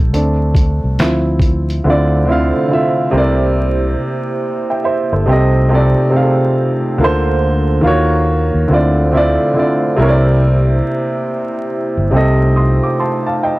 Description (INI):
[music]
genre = lo-fi hip hop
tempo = 70 BPM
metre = 4/4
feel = swing 65% on 16ths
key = D minor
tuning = A4 = 440 Hz
[part]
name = warm upright piano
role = accompaniment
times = 0.0-13.6 s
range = C3 to Eb6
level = -14 LUFS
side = equal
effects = cassette tape, low-pass filter
[part]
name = fingered electric bass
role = bass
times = 0.0-12.8 s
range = G1 to Eb2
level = -15 LUFS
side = equal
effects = none
[part]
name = lo-fi sampler-style drum kit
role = drums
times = 0.1-1.8 s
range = handclaps, hi-hat, kick drum, snare drum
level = -14 LUFS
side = equal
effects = vintage 12-bit sampler grit
[part]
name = glass harmonica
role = sustained chords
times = 1.8-13.6 s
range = A3 to Db5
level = -22 LUFS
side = right 1 dB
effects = low-pass filter
[sound]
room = little or no reverb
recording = dry, gritty hardware recording, transformer saturation, vinyl crackle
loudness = -12 LUFS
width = side -19 dB against mid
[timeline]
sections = 0.0-1.8 A section; 1.8-13.6 B section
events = upright piano solo 0.0-1.8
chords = 0.1 Amadd11; 1.0 Dm7; 3.1 C7; 5.3 F7/C; 7.0 Bbmaj9/D; 7.8 Ebm7; 8.7 Dm7; 10.0 C7; 12.1 F7/C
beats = 0.13 0.98 | 1.84 2.70 3.56 4.41 | 5.27 6.13 6.98 7.84 | 8.70 9.55 10.41 11.27 | 12.13 12.98